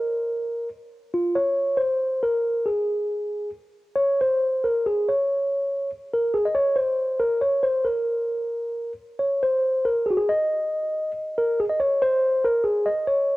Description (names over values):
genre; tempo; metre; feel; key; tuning
mexican folk; 139 BPM; 3/4; straight; unclear; A4 = 439 Hz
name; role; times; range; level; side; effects
mellow tine electric piano; solo; 0.0-13.4 s; F4 to Eb5; -21 LUFS; equal; slow stereo tremolo
room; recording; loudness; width
moderate spring reverb, RT60 2.7 s; home recording on cassette; -21 LUFS; side -19 dB against mid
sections
0.0-4.0 A section; 4.0-13.4 B section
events
none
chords
none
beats
| 0.07 0.50 0.93 | 1.36 1.79 2.22 | 2.66 3.09 3.53 | 3.98 4.42 4.85 | 5.29 5.71 6.14 | 6.57 7.00 7.43 | 7.87 8.30 8.75 | 9.19 9.63 10.07 | 10.50 10.93 11.36 | 11.79 12.22 12.65 | 13.08